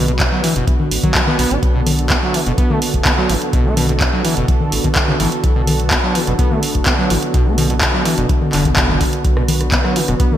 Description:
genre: acid house.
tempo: 126 BPM.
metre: 4/4.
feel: straight.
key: B minor.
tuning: A4 = 438 Hz.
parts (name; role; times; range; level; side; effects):
warm analog pad; sustained chords; 0.0-10.4 s; D3 to B4; -21 LUFS; right 1 dB; wide subtle chorus, sidechain pumping.
overdriven acid bass; riff; 0.0-10.4 s; B1 to D4; -20 LUFS; equal; distortion, tube saturation, lush chorus, cassette tape, sidechain pumping, ping-pong delay.
round analog bass; bass; 0.0-10.2 s; F#1 to B1; -21 LUFS; equal; sidechain pumping.
punchy analog drum machine; drums; 0.1-10.4 s; congas, handclaps, hi-hat, rim click; -18 LUFS; equal; gated reverb.
electronic kick drum; drums; 0.2-10.3 s; none; -18 LUFS; equal; none.
room: moderate lush hall reverb, RT60 1.8 s, digital ambience.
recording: bright 1980s-style digital production.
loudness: -13 LUFS.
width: side -11 dB against mid.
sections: 0.0-10.4 A section.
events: none.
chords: 0.0 Bm.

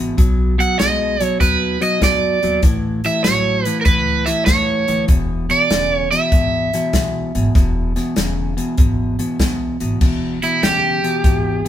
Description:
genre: electric blues shuffle.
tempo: 98 BPM.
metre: 4/4.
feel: swing 67% on 8ths.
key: E mixolydian.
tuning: A4 = 440 Hz.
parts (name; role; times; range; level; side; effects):
electric guitar at the edge of break-up; riff; 0.0-11.7 s; E2 to G#3; -21 LUFS; left 2 dB; none.
upright bass; bass; 0.0-11.6 s; E1 to F#2; -23 LUFS; equal; none.
natural country drum kit; drums; 0.2-11.7 s; crash cymbal, hi-hat, kick drum, snare drum; -17 LUFS; equal; none.
overdriven semi-hollow guitar; melody; 0.6-11.7 s; E4 to F#5; -17 LUFS; right 3 dB; none.
room: light reverb.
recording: band playing live in one room.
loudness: -14 LUFS.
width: side -11 dB against mid.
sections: 0.0-10.0 A section; 10.0-11.7 B section.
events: overdriven electric guitar solo 10.0-11.7.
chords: 0.2 B; 2.6 A; 5.1 E.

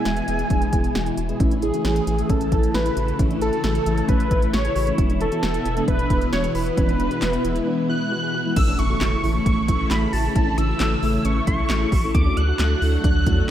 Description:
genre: synth-pop.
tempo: 134 BPM.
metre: 4/4.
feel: straight.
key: unclear.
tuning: A4 = 440 Hz.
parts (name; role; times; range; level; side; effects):
wide unison lead; melody; 0.0-13.5 s; G#4 to F#6; -26 LUFS; equal; analog delay.
mellow synth brass; accompaniment; 0.0-13.5 s; E3 to A4; -27 LUFS; left 1 dB; chorus.
phased string machine; sustained chords; 0.0-13.5 s; B2 to F#4; -26 LUFS; equal; ensemble chorus, phaser.
soft round pluck; arpeggios; 0.1-13.4 s; B3 to G#4; -33 LUFS; right 5 dB; chorus, analog delay.
round analog bass; bass; 0.1-13.4 s; E1 to E2; -24 LUFS; equal; none.
deep house drum kit; drums; 0.1-13.4 s; crash cymbal, handclaps, hi-hat, kick drum, snare drum; -23 LUFS; equal; none.
impact; sound effects; 8.6-10.4 s; none; -34 LUFS; equal; none.
room: light reverb.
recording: none.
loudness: -18 LUFS.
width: side -11 dB against mid.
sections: 0.0-8.6 A section; 8.6-13.5 B section.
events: impact 8.6-10.4.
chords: 0.0 E; 1.4 A; 5.0 E; 8.6 A; 12.1 D.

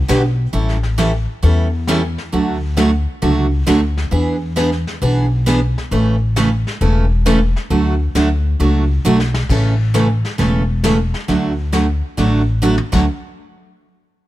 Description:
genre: country, western swing.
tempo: 134 BPM.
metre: 4/4.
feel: swing 68% on 8ths.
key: D major.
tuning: A4 = 441 Hz.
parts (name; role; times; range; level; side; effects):
upright bass; bass; 0.0-13.1 s; E1 to E2; -16 LUFS; left 1 dB; none.
picked steel-string acoustic guitar; accompaniment; 0.1-13.0 s; C#3 to A4; -17 LUFS; right 2 dB; none.
vintage brush drum kit; drums; 0.1-13.0 s; brushed snare drum, crash cymbal, hi-hat, kick drum, snare drum, toms; -25 LUFS; left 1 dB; none.
room: little or no reverb.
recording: none.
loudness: -14 LUFS.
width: side -15 dB against mid.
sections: 0.0-9.5 A section; 9.5-13.1 B section; 13.1-14.3 C section.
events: drum fill 9.0-9.5, 12.6-13.1.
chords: 0.0 Gmaj7; 0.5 A7; 2.3 D; 4.1 E7; 5.9 A; 7.7 D; 9.5 A; 11.3 D; 13.1 N.C..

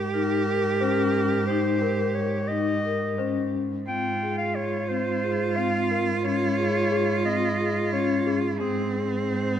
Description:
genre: contemporary instrumental, chamber music in an uneven meter.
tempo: 178 BPM (eighths).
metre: 7/8.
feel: straight.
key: unclear.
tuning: A4 = 439 Hz.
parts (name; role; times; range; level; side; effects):
warm cello; second line; 0.0-9.6 s; C4 to G4; -28 LUFS; right 4 dB; none.
warm cello; bass; 0.0-9.6 s; Ab2; -29 LUFS; right 3 dB; none.
warm clarinet; melody; 0.1-9.6 s; Ab4 to G5; -29 LUFS; left 1 dB; none.
vibraphone with soft mallets; arpeggios; 0.1-9.4 s; C4 to Bb4; -28 LUFS; left 6 dB; none.
worn celesta; texture; 0.8-8.9 s; Ab4 to C5; -35 LUFS; left 6 dB; none.
room: light reverb.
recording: close, detailed microphones.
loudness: -22 LUFS.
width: side -9 dB against mid.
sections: 0.0-9.6 A section.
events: none.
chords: 0.0 Eb/Ab; 3.9 Dbmaj7/Ab; 8.6 Fm/Ab (rootless).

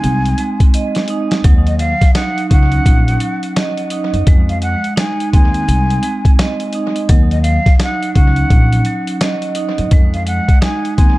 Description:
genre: hip hop, boom-bap hip-hop.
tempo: 85 BPM.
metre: 4/4.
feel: swing 62% on 16ths.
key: Eb dorian.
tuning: A4 = 438 Hz.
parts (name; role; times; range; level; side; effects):
breathy jazz flute; melody; 0.0-11.2 s; Eb5 to Ab5; -22 LUFS; equal; high-pass filter, low-pass filter, dub echo.
vibraphone with hard mallets; accompaniment; 0.0-11.2 s; Gb3 to Eb5; -20 LUFS; right 3 dB; cassette tape, high-pass filter, low-pass filter, dub echo.
upright bass; bass; 0.0-11.2 s; Bb1 to Gb2; -15 LUFS; equal; none.
boom bap sampler-style drum kit; drums; 0.0-11.2 s; hi-hat, kick drum, snare drum; -13 LUFS; equal; none.
room: studio reverb.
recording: echo-heavy mix.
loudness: -11 LUFS.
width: side -19 dB against mid.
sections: 0.0-11.2 A section.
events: drum fill 0.7-1.4.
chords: 0.0 Fm7 (rootless); 1.4 Ebm7; 4.3 Fm7; 7.1 Ebm7; 9.9 Fm7.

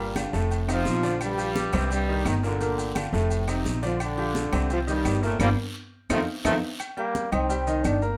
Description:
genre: latin, salsa.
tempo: 172 BPM.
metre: 4/4.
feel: straight.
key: unclear.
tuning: A4 = 440 Hz.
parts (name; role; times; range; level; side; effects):
bright trombone section; melody; 0.0-6.5 s; G2 to F4; -30 LUFS; equal; none.
clear baby grand piano; accompaniment; 0.0-8.2 s; A2 to Eb6; -32 LUFS; equal; none.
upright bass; bass; 0.0-8.2 s; F1 to F2; -30 LUFS; equal; none.
agogo bells and timbales; percussion; 0.2-8.0 s; none; -40 LUFS; equal; none.
claves; percussion; 0.2-8.0 s; none; -42 LUFS; equal; none.
congas; percussion; 0.2-8.2 s; none; -35 LUFS; equal; none.
guiro; percussion; 0.2-6.5 s; none; -44 LUFS; equal; none.
maracas; percussion; 0.2-8.2 s; none; -45 LUFS; equal; none.
bright trombone; melody; 7.0-8.0 s; Bb3 to D4; -30 LUFS; equal; none.
room: moderate studio reverb, RT60 0.6 s.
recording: none.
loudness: -26 LUFS.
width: mono.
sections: 0.0-6.8 A section; 6.8-8.2 B section.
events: band accent 5.4-6.8; drum fill 5.9-6.8; trombone solo 6.8-8.2.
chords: 0.0 Gm7; 0.5 F7; 1.2 Bb6; 1.9 Cm7; 2.6 Gm7; 3.3 F7; 4.0 Bb6; 4.7 Cm7; 5.4 Gm; 6.1 F7; 6.8 Cm7.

